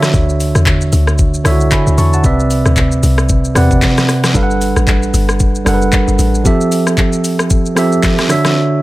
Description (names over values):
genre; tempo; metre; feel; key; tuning
amapiano; 114 BPM; 4/4; swing 58% on 16ths; G major; A4 = 439 Hz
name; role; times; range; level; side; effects
tine electric piano; accompaniment; 0.0-8.8 s; C3 to C#6; -13 LUFS; right 2 dB; none
smooth R&B drum kit; drums; 0.0-8.6 s; handclaps, hi-hat, kick drum, rim click, shaker, snare drum; -15 LUFS; left 1 dB; none
deep log drum bass; bass; 0.1-6.4 s; F#1 to E2; -14 LUFS; equal; none
room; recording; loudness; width
little or no reverb; none; -10 LUFS; side -17 dB against mid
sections
0.0-8.8 A section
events
none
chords
0.0 Dmaj9; 2.2 Cmaj9; 4.3 Gmaj9; 6.5 Fmaj9; 8.3 Dmaj9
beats
| 0.14 0.66 1.19 1.72 | 2.24 2.77 3.29 3.82 | 4.35 4.87 5.40 5.93 | 6.45 6.98 7.50 8.03 | 8.56